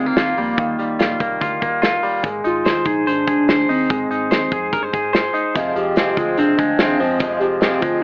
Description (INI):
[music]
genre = jangly indie pop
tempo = 145 BPM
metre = 4/4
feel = straight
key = unclear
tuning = A4 = 440 Hz
[part]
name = hollow clarinet-like synth lead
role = melody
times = 0.0-8.0 s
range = Bb3 to G4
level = -20 LUFS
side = equal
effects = chorus
[part]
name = direct-recorded clean electric guitar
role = arpeggios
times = 0.0-8.0 s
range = F2 to C5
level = -19 LUFS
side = equal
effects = none
[part]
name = vintage muted fingered electric bass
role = bass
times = 0.0-8.0 s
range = F1 to Ab2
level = -35 LUFS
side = equal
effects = none
[part]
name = loose indie drum kit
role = drums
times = 0.2-7.9 s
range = hi-hat, kick drum, snare drum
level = -19 LUFS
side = equal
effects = none
[part]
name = picked twelve-string acoustic guitar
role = accompaniment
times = 5.6-8.0 s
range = F2 to C4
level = -22 LUFS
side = equal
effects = none
[sound]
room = moderate studio reverb, RT60 0.5 s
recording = worn, warbling old tape, cassette tape, warbly pitch drift, AM radio sound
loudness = -15 LUFS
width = side -35 dB against mid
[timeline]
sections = 0.0-8.0 A section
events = none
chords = 0.0 Ebadd9; 2.2 Abadd9; 5.6 Fm